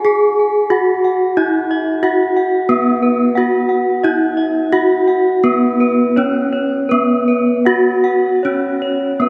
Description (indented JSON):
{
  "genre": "gamelan",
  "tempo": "77-91 BPM",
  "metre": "4/4",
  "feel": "straight",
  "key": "unclear",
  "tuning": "A4 = 441 Hz",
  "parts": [
    { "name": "gamelan-type bronze metallophone", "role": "melody", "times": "0.0-9.3 s", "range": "B3-25c to G#4", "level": "-16 LUFS", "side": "equal", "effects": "none" },
    { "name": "gamelan-type bronze metallophone", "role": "arpeggios", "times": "0.0-9.3 s", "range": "B4-25c to G#5", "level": "-22 LUFS", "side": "equal", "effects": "none" }
  ],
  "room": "wet cathedral reverb, RT60 4.7 s",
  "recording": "recorded in a church or concert hall",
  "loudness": "-15 LUFS",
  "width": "mono",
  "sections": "0.0-8.4 A section",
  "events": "none",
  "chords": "none",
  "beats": "| 0.06 0.72 1.38 2.04 | 2.70 3.37 4.05 4.74 | 5.45 6.17 6.91 7.66 | 8.43 9.21"
}